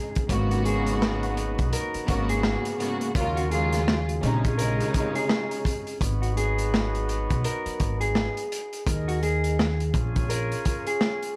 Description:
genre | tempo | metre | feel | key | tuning
hip hop, boom-bap hip-hop | 84 BPM | 4/4 | swing 60% on 16ths | G# dorian | A4 = 439 Hz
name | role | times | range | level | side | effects
mellow electric guitar | melody | 0.0-11.4 s | F#4 to A#4 | -33 LUFS | equal | harmonic tremolo, high-pass filter, low-pass filter
warm symphonic string section | accompaniment | 0.0-5.8 s | D#2 to F#4 | -31 LUFS | equal | high-pass filter, low-pass filter
crunchy breakbeat drum kit | drums | 0.2-11.4 s | hi-hat, kick drum, rim click, snare drum | -30 LUFS | equal | none
dark horn section | stabs | 0.3-11.3 s | F#3 to D#5 | -37 LUFS | equal | high-pass filter, low-pass filter, analog delay
upright bass | bass | 0.3-10.5 s | G#1 to D#2 | -30 LUFS | equal | transformer saturation
room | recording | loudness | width
light reverb | dry, gritty hardware recording, transformer saturation, vinyl crackle | -26 LUFS | mono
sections
0.0-11.4 A section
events
none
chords
0.3 G#m11; 3.2 D#m11; 4.2 A#m11; 6.0 G#m7; 8.9 D#sus4; 9.9 A#m7

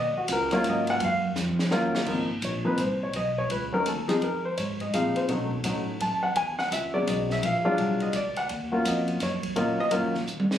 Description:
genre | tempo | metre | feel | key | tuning
jazz piano trio | 168 BPM | 3/4 | swing 64% on 8ths | Eb dorian | A4 = 436 Hz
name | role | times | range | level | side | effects
warm baby grand piano | melody | 0.0-10.1 s | F3 to A5 | -25 LUFS | left 1 dB | none
upright bass | bass | 0.0-10.6 s | Ab1 to B2 | -32 LUFS | right 1 dB | none
open jazz drum kit | drums | 0.3-10.6 s | crash cymbal, hi-hat, kick drum, ride cymbal, snare drum, toms | -34 LUFS | right 1 dB | none
room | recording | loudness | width
moderate club reverb, RT60 0.6 s | recorded on a phone in the room, club reverb | -24 LUFS | side -10 dB against mid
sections
0.0-2.1 A section; 2.1-10.6 B section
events
grand piano solo 0.0-2.1; drum fill 1.4-2.1, 10.3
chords
0.0 Ebm7; 2.1 Ab69; 3.1 B9; 4.2 Bbm11/F; 5.3 B7; 6.4 E69; 7.4 Bb7b13; 8.5 Ebm9

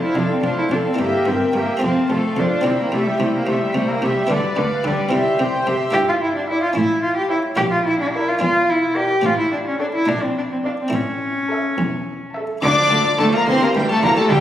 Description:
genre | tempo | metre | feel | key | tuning
classical, baroque-style concerto movement with solo episodes | 72 BPM (dotted quarters) | 6/8 | straight | unclear | A4 = 440 Hz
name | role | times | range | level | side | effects
rich cello | melody | 0.0-14.4 s | G3 to G4 | -19 LUFS | equal | none
warm chamber violin section | melody | 0.0-14.4 s | D5 to D6 | -25 LUFS | left 2 dB | none
warm chamber violin section | second line | 0.0-14.4 s | G4 to G5 | -25 LUFS | left 1 dB | none
buff-stop harpsichord | accompaniment | 0.0-14.4 s | E2 to Bb4 | -26 LUFS | equal | none
dark chamber viola section | accompaniment | 0.0-14.4 s | E3 to D5 | -24 LUFS | right 1 dB | none
rich chamber cello section | bass | 0.2-14.4 s | E2 to D3 | -26 LUFS | right 2 dB | none
rich chamber double bass section | bass | 0.2-14.4 s | E1 to D2 | -30 LUFS | right 2 dB | none
room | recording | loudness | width
wet scoring stage reverb, RT60 2.1 s | recorded on a phone in the room, studio reverb | -16 LUFS | side -11 dB against mid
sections
0.0-12.6 A section; 12.6-14.4 B section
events
none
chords
0.0 F; 1.0 Edim/G; 1.8 F; 2.7 C; 4.3 Bdim/D; 5.1 C; 5.9 Em7b5/G; 6.8 A7; 7.6 Bb; 8.4 Em7b5; 9.2 A7; 10.1 Bb; 10.9 A; 12.6 Dm; 13.5 Em7b5/D

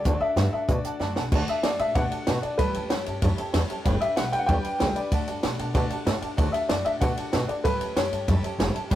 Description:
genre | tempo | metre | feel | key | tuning
rockabilly | 190 BPM | 4/4 | straight | D major | A4 = 440 Hz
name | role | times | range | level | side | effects
dark upright piano | melody | 0.0-8.6 s | B4 to G5 | -28 LUFS | left 1 dB | none
picked steel-string acoustic guitar | accompaniment | 0.0-9.0 s | A2 to B4 | -34 LUFS | left 2 dB | none
upright bass | bass | 0.0-9.0 s | F#1 to B2 | -28 LUFS | equal | none
honky-tonk upright piano | accompaniment | 0.1-9.0 s | B4 to B5 | -35 LUFS | right 4 dB | none
compact cocktail drum kit | drums | 0.1-9.0 s | crash cymbal, hi-hat, kick drum, ride cymbal, snare drum | -27 LUFS | right 1 dB | none
room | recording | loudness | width
light reverb | rough rehearsal-room recording, warm saturation | -23 LUFS | side -12 dB against mid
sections
0.0-1.3 A section; 1.3-9.0 B section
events
drum fill 1.0-1.3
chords
0.1 D; 2.6 A7; 3.9 G; 5.1 D; 7.6 A7

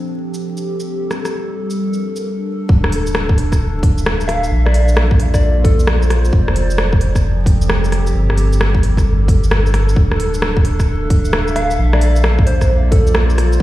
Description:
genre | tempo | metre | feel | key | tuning
future garage | 132 BPM | 4/4 | swing 65% on 16ths | D minor | A4 = 441 Hz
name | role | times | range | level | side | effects
warbly tape-like pad | sustained chords | 0.0-13.6 s | F3 to F5 | -22 LUFS | equal | chorus, built-in reverb, vintage 12-bit sampler grit, sidechain pumping
organic electronic drum kit | drums | 0.3-13.6 s | hi-hat, rim click, shaker | -22 LUFS | equal | none
warm sub bass | bass | 2.7-13.6 s | D1 to Bb1 | -15 LUFS | equal | sidechain pumping
electronic kick drum | drums | 2.7-13.6 s | none | -13 LUFS | equal | none
soft struck synth lead | melody | 4.3-6.0, 11.6-13.6 s | A4 to F5 | -22 LUFS | left 1 dB | chorus, analog delay
room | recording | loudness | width
digital ambience | played on a big sound system in a bare room, large studio reverb, vinyl crackle | -13 LUFS | side -15 dB against mid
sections
0.0-2.7 A section; 2.7-13.6 B section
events
filter sweep on ambient pad 0.0-2.7; break 2.2-2.7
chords
0.0 F; 0.9 Gm; 2.7 Dm; 4.5 Bb; 6.3 F; 8.1 Gm; 10.0 Dm; 11.8 Bb

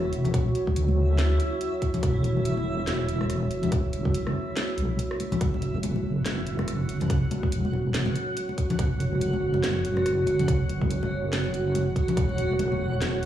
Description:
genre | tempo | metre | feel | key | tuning
deep dubstep | 142 BPM | 4/4 | swing 58% on 16ths, half-time | unclear | A4 = 440 Hz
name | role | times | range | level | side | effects
deep dark ambient pad | sustained chords | 0.0-13.3 s | F#4 to C#5 | -31 LUFS | right 2 dB | chorus, built-in reverb
deep soft wobble bass | bass | 0.0-13.3 s | E1 to D2 | -26 LUFS | equal | chorus
backwards swelling texture | texture | 0.0-13.3 s | E4 to F#4 | -34 LUFS | equal | built-in reverb
garage drum kit | drums | 0.1-13.3 s | hi-hat, rim click, snare drum | -34 LUFS | equal | none
congas | percussion | 0.2-13.1 s | none | -33 LUFS | left 3 dB | dub echo
electronic kick drum | drums | 0.3-12.3 s | none | -26 LUFS | equal | none
room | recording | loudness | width
moderate digital room reverb, RT60 1.1 s | played on a big sound system in a bare room, large studio reverb, small room ambience | -23 LUFS | side -11 dB against mid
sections
0.0-13.3 A section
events
none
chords
0.0 E5; 5.4 F#5

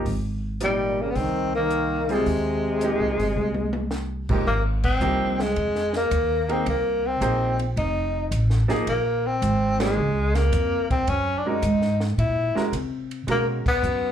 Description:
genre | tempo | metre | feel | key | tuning
jazz, small-group swing and bop | 109 BPM | 4/4 | swing 69% on 8ths | Ab major | A4 = 440 Hz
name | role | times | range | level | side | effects
clear baby grand piano | accompaniment | 0.0-13.6 s | Ab2 to C5 | -28 LUFS | right 3 dB | plate reverb, slapback echo
upright bass | bass | 0.0-14.1 s | F1 to C3 | -25 LUFS | equal | none
compact cocktail drum kit | drums | 0.1-14.0 s | crash cymbal, hi-hat, kick drum, ride cymbal, snare drum, toms | -30 LUFS | equal | none
breathy tenor saxophone | melody | 0.6-14.1 s | G3 to Fb4 | -24 LUFS | left 1 dB | plate reverb, slapback echo
warm trombone | second line | 0.6-3.9 s | Bb2 to Eb3 | -29 LUFS | right 2 dB | plate reverb, slapback echo
room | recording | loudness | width
light reverb | live gig heard through the venue's PA, club reverb | -21 LUFS | side -9 dB against mid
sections
0.0-4.5 A section; 4.5-14.1 B section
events
drum fill 3.4-3.9; band accent 4.7, 9.7, 13.6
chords
0.1 Abmaj9; 4.5 Abmaj7; 6.7 Bb9sus4; 7.8 F7; 8.9 Bbm7; 11.1 Gb7; 13.3 Bmaj7(no3)

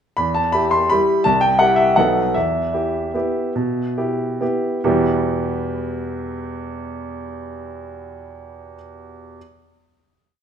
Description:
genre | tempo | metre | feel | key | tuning
classical, piano waltz | 136-176 BPM | 3/4 | rubato | E minor | A4 = 440 Hz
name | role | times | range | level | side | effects
clear grand piano | solo | 0.2-9.4 s | B1 to C6 | -18 LUFS | equal | none
room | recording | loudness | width
moderate recital hall reverb, RT60 1.4 s | minimal, uncompressed stereo recording | -17 LUFS | side -8 dB against mid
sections
0.2-4.8 A section; 4.8-7.3 final chord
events
slowing down 1.8-4.8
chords
0.2 Em; 1.3 C; 2.0 B7; 2.4 Em

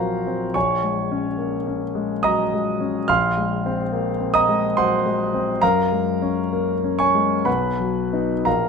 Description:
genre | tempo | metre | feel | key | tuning
classical, impressionist solo piano | 58-72 BPM | 3/4 | rubato | Bb minor | A4 = 440 Hz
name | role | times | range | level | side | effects
clear concert grand piano | solo | 0.0-8.7 s | Bb1 to F6 | -19 LUFS | equal | none
room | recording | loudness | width
moderate large studio reverb, RT60 1.3 s | none | -19 LUFS | side -5 dB against mid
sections
0.0-8.7 A section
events
none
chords
0.0 Gbmaj7#11/Bb; 0.6 Bbm7; 3.1 Ab69/Bb; 5.6 Gbadd9; 7.5 B

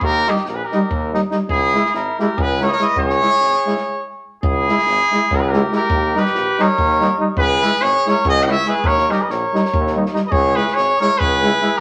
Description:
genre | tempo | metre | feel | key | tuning
balkan folk, Balkan brass band | 286 BPM (eighths) | 7/8 | straight | C# dorian sharp4 | A4 = 436 Hz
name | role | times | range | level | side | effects
clear trumpet | melody | 0.0-11.8 s | G4 to G5 | -20 LUFS | equal | none
warm flugelhorn | second line | 0.0-11.8 s | D#4 to D#5 | -26 LUFS | equal | none
clear tuba | bass | 0.0-11.5 s | G#1 to D#2 | -26 LUFS | equal | none
compact cocktail drum kit | percussion | 0.0-11.7 s | kick drum, snare drum | -27 LUFS | equal | none
brilliant trombone | accompaniment | 0.3-11.7 s | D#4 to E4 | -28 LUFS | equal | none
warm euphonium | accompaniment | 0.3-11.7 s | G3 to G#3 | -25 LUFS | equal | none
room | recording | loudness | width
wet studio reverb, RT60 0.9 s | none | -17 LUFS | mono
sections
0.0-4.4 A section; 4.4-11.8 A section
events
stop 3.8-4.4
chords
0.0 D#; 1.5 C#m; 5.9 D#; 7.4 C#m; 8.8 D#; 10.3 C#m

